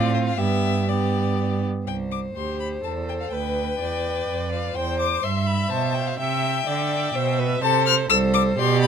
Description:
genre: quick classical-period movement for string quartet.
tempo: 125 BPM.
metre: 3/4.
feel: straight.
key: C major.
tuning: A4 = 444 Hz.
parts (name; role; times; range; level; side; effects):
warm violin; melody; 0.0-8.9 s; C5 to F6; -26 LUFS; left 11 dB; none.
warm violin; second line; 0.0-8.9 s; F4 to E5; -28 LUFS; left 3 dB; none.
clear viola; accompaniment; 0.0-8.9 s; B3 to E5; -28 LUFS; right 4 dB; none.
rich cello; bass; 0.0-8.9 s; C2 to D3; -24 LUFS; right 5 dB; none.
room: light reverb.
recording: close, detailed microphones.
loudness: -21 LUFS.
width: side -7 dB against mid.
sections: 0.0-1.9 A section; 1.9-8.9 B section.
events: none.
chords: 0.4 G; 1.9 C; 3.3 G7/D; 4.8 C/E; 6.2 C; 7.6 C5.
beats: | 0.38 0.88 1.38 | 1.88 2.36 2.85 | 3.33 3.81 4.28 | 4.76 5.24 5.72 | 6.19 6.67 7.15 | 7.62 8.10 8.58.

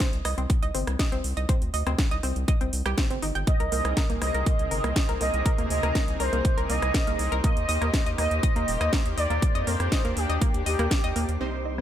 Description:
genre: progressive house.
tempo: 121 BPM.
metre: 4/4.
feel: straight.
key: unclear.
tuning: A4 = 440 Hz.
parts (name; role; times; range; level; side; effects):
analog pluck; arpeggios; 0.0-11.8 s; Bb3 to G5; -32 LUFS; equal; chorus, sidechain pumping, ping-pong delay.
electronic kick drum; drums; 0.0-11.0 s; none; -24 LUFS; equal; none.
house drum kit; drums; 0.0-11.8 s; hi-hat, rim click, snare drum; -32 LUFS; equal; low-pass filter on snare, low-pass filter on hats, low-pass filter on room.
round analog bass; bass; 0.1-11.8 s; Eb1 to F2; -28 LUFS; equal; sidechain pumping.
expressive portamento lead; melody; 3.5-11.3 s; G4 to Eb5; -29 LUFS; right 1 dB; ensemble chorus, sidechain pumping, ping-pong delay.
lush unison pad; sustained chords; 3.5-11.8 s; C3 to Bb4; -35 LUFS; equal; chorus, sidechain pumping.
drifting glass-harmonics texture; texture; 3.9-11.8 s; C5 to D6; -41 LUFS; left 3 dB; chorus, built-in reverb, sidechain pumping.
supersaw stab; stabs; 11.4-11.8 s; C3 to C5; -31 LUFS; right 4 dB; sidechain pumping, ping-pong delay.
room: digital ambience.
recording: none.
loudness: -23 LUFS.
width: side -11 dB against mid.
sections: 0.0-11.4 A section.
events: none.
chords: 0.0 Cm; 3.5 Abadd9; 7.4 Eb.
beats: 0.00 0.50 0.99 | 1.49 1.99 2.48 2.98 | 3.47 3.97 4.46 4.96 | 5.46 5.95 6.45 6.94 | 7.44 7.93 8.43 8.93 | 9.42 9.92 10.41 10.91 | 11.41.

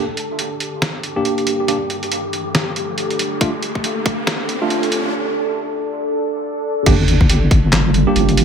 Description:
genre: deep dubstep.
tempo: 139 BPM.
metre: 4/4.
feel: swing 59% on 16ths, half-time.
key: G minor.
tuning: A4 = 440 Hz.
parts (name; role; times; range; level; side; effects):
deep dark ambient pad; sustained chords; 0.0-8.4 s; G3 to D5; -23 LUFS; right 2 dB; chorus, built-in reverb.
tine electric piano; stabs; 0.0-8.4 s; A3 to G4; -22 LUFS; right 2 dB; overdrive, fast stereo tremolo, low-pass filter, dub echo.
riser and sub drop; sound effects; 0.0-8.4 s; none; -26 LUFS; left 1 dB; none.
wind-like tuned noise texture; texture; 0.0-8.4 s; F4 to G4; -28 LUFS; left 4 dB; built-in reverb.
trip hop sampler-style drum kit; drums; 0.2-8.4 s; crash cymbal, handclaps, hi-hat, snare drum; -21 LUFS; right 1 dB; studio reverb.
electronic kick drum; drums; 3.4-4.2, 6.9-7.6 s; none; -15 LUFS; left 1 dB; studio reverb.
deep soft wobble bass; bass; 6.9-8.4 s; G1; -16 LUFS; left 1 dB; chorus.
room: light reverb.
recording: high-pass filter.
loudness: -16 LUFS.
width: side -7 dB against mid.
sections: 0.0-6.9 A section; 6.9-8.4 B section.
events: build-up 0.0-6.9; riser 0.0-5.1; filter sweep on ambient pad 0.0-6.9; filter sweep 0.0-6.9; break 5.1-6.9; drop 6.9-8.4; impact 6.9-8.4.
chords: 0.0 Gm; 3.4 Dm; 6.9 Gm.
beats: 0.39 0.82 1.25 | 1.68 2.12 2.55 2.98 | 3.41 3.84 4.27 4.71 | 5.14 5.57 6.00 6.43 | 6.86 7.29 7.73 8.16.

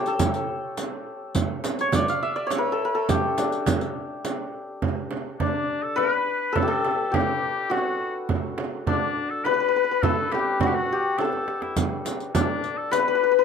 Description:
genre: Persian modal ensemble.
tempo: 104 BPM.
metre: 3/4.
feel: straight.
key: D dastgah mahur from 4.8 s.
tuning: A4 = 440 Hz.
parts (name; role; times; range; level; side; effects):
santur; melody; 0.0-13.4 s; D4 to F5; -25 LUFS; left 4 dB; none.
riq; percussion; 0.1-4.4, 11.8-13.1 s; none; -32 LUFS; left 3 dB; none.
frame drum; percussion; 0.2-13.1 s; none; -28 LUFS; right 4 dB; none.
tombak; percussion; 0.2-13.1 s; none; -30 LUFS; right 4 dB; none.
warm oboe; second line; 5.4-13.4 s; D4 to B4; -28 LUFS; left 2 dB; none.
room: light reverb.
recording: close, detailed microphones.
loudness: -22 LUFS.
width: side -6 dB against mid.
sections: 0.0-4.8 A section; 4.8-13.4 B section.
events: drum fill 11.2-11.8.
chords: none.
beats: 0.20 0.78 | 1.35 1.93 2.51 | 3.09 3.67 4.24 | 4.82 5.40 5.98 | 6.55 7.13 7.71 | 8.29 8.87 9.45 | 10.03 10.61 11.19 | 11.77 12.35 12.93.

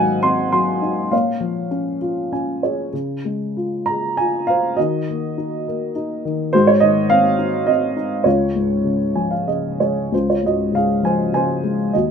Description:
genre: classical, lyrical solo piano.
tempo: 90-107 BPM.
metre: 3/4.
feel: rubato.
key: Db major.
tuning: A4 = 440 Hz.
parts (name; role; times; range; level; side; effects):
dark upright piano; solo; 0.0-12.1 s; Db2 to C6; -17 LUFS; equal; none.
room: light reverb.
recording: none.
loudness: -17 LUFS.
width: side -6 dB against mid.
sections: 0.0-10.1 A section; 10.1-12.1 A section.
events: upright piano fill 2.0-2.9, 8.9-10.1.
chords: 0.0 Ab7; 1.1 Bbm7; 2.9 Dbmaj7; 4.8 Ebm; 6.5 Ab7; 8.3 Db; 10.1 Dbmaj7.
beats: 0.55 | 1.12 1.71 2.32 | 2.93 3.56 4.17 | 4.77 5.36 5.95 | 6.53 7.11 7.68 | 8.26 8.85 9.49 | 10.13 10.74 11.34 | 11.94.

